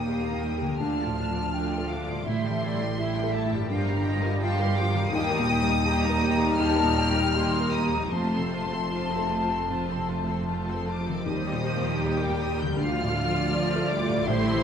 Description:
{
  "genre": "cinematic",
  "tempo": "75-84 BPM",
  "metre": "4/4",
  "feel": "rubato",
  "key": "Eb lydian",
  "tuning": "A4 = 443 Hz",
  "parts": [
    { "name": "rich symphonic violin section", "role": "melody", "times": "0.0-14.6 s", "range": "A5 to G6", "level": "-33 LUFS", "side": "left 2 dB", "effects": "none" },
    { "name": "warm symphonic violin section", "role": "second line", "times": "0.0-14.6 s", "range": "F4 to C6", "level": "-36 LUFS", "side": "left 4 dB", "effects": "none" },
    { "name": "clear symphonic viola section", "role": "accompaniment", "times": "0.0-14.6 s", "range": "D3 to Bb4", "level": "-34 LUFS", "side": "right 3 dB", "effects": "none" },
    { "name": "felt-muted upright piano", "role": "accompaniment", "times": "0.0-14.6 s", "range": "D2 to Bb4", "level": "-31 LUFS", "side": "left 1 dB", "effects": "none" },
    { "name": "mellow French horn section", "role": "sustained chords", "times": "0.0-14.6 s", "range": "G3 to G4", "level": "-34 LUFS", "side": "left 3 dB", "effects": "none" },
    { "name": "concert harp", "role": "arpeggios", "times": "0.0-14.6 s", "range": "G2 to Bb4", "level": "-36 LUFS", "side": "left 5 dB", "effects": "none" },
    { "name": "rich symphonic cello section", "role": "bass", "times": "0.0-14.6 s", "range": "D2 to A2", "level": "-33 LUFS", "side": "right 3 dB", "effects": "none" },
    { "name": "rich symphonic double bass section", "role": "bass", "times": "0.0-14.6 s", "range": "F1 to Eb2", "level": "-32 LUFS", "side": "right 3 dB", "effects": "none" },
    { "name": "mellow flute section", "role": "second line", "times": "0.1-14.6 s", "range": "C5 to C6", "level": "-31 LUFS", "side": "left 1 dB", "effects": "none" }
  ],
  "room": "wet scoring stage reverb, RT60 1.5 s",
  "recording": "none",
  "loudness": "-24 LUFS",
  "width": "side -8 dB against mid",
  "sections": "0.0-14.6 A section",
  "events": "none",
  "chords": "0.0 Eb; 0.8 Dm; 2.3 Am7; 3.7 Gm7; 5.1 Eb; 8.1 F; 11.3 Eb; 12.8 Dm",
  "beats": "0.04 0.80 1.53 | 2.26 2.98 3.70 4.41 | 5.13 5.85 6.58 7.33 | 8.12 8.91 9.69 10.48 | 11.27 12.03 12.78 13.52 | 14.26"
}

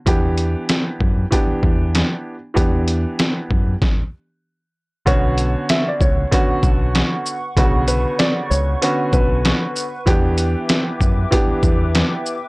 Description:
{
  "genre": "hip hop, boom-bap hip-hop",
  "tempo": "96 BPM",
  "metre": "4/4",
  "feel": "swing 61% on 16ths",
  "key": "B minor",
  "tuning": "A4 = 440 Hz",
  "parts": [
    { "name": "dark grand piano", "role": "accompaniment", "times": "0.1-12.3 s", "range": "C#3 to G4", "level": "-22 LUFS", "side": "right 1 dB", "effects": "high-pass filter, low-pass filter" },
    { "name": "deep dub fingered electric bass", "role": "bass", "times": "0.1-12.0 s", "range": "B1 to F#2", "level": "-20 LUFS", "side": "equal", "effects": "none" },
    { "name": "trip hop sampler-style drum kit", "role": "drums", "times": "0.1-12.4 s", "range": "hi-hat, kick drum, shaker, snare drum", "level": "-18 LUFS", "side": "equal", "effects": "overdrive" },
    { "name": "dark upright piano", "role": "melody", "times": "5.1-10.0 s", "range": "B4 to E5", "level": "-24 LUFS", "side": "equal", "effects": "high-pass filter, low-pass filter, tape echo" },
    { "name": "hollow soft pad", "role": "sustained chords", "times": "5.1-12.5 s", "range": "B4 to D6", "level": "-29 LUFS", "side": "equal", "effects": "chorus, high-pass filter, low-pass filter" }
  ],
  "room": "little or no reverb",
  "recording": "dry, gritty hardware recording, transformer saturation",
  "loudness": "-16 LUFS",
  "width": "side -25 dB against mid",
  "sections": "0.0-5.1 A section; 5.1-12.5 B section",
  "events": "stop 3.8-5.1",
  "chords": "0.1 Em7; 5.1 Bmadd9; 10.1 Em7",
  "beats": "| 0.07 0.69 1.32 1.94 | 2.57 3.19 3.82 4.44 | 5.07 5.69 6.32 6.94 | 7.57 8.19 8.82 9.44 | 10.07 10.69 11.32 11.94"
}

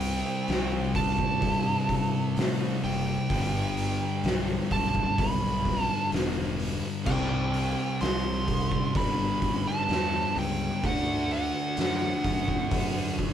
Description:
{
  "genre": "stoner and doom metal",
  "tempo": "64 BPM",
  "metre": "4/4",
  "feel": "straight",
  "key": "unclear",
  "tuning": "A4 = 441 Hz",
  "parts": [
    { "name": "fuzz lead guitar", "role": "melody", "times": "0.0-13.2 s", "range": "F#5 to C6", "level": "-31 LUFS", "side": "right 2 dB", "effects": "distortion" },
    { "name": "thick fuzz guitar", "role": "riff", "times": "0.0-13.3 s", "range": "G2 to D4", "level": "-32 LUFS", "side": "left 7 dB", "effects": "distortion" },
    { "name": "thick fuzz guitar", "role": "riff", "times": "0.0-13.3 s", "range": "G2 to D4", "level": "-32 LUFS", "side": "right 4 dB", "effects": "distortion" },
    { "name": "fuzz fingered electric bass", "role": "bass", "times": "0.0-13.3 s", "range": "E1 to A2", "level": "-34 LUFS", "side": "equal", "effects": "overdrive" },
    { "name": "oversized low-tuned drum kit", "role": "drums", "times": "0.0-13.3 s", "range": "crash cymbal, hi-hat, kick drum, snare drum", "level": "-30 LUFS", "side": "equal", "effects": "none" }
  ],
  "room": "light reverb",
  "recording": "band playing live in one room",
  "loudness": "-25 LUFS",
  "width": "side -9 dB against mid",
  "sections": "0.0-13.3 A section",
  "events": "none",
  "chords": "0.0 C5; 3.3 G; 7.1 C5; 8.9 G5; 10.8 D",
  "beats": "0.48 1.43 2.37 | 3.31 4.25 5.19 6.13 | 7.07 8.01 8.95 9.89 | 10.83 11.77 12.71"
}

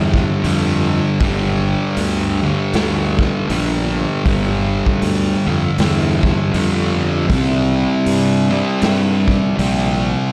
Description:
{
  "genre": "stoner and doom metal",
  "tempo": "79 BPM",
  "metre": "4/4",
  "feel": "swing 60% on 8ths",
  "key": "unclear",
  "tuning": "A4 = 440 Hz",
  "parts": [
    { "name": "fuzz guitar", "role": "riff", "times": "0.0-10.3 s", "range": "G2 to C4", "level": "-19 LUFS", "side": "equal", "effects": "distortion" },
    { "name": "fuzz fingered electric bass", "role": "bass", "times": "0.0-10.1 s", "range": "G1 to G2", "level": "-23 LUFS", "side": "equal", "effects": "overdrive, tube saturation" },
    { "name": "raw garage drum kit", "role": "drums", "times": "0.1-9.8 s", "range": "hi-hat, kick drum, snare drum", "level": "-25 LUFS", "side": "equal", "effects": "none" }
  ],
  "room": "studio ambience",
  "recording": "dark, warm production",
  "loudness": "-17 LUFS",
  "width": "mono",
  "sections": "0.0-10.3 A section",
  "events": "none",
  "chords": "0.0 G5; 7.3 C5",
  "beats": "0.45 | 1.21 1.97 2.73 3.49 | 4.25 5.01 5.78 6.54 | 7.30 8.06 8.83 9.59"
}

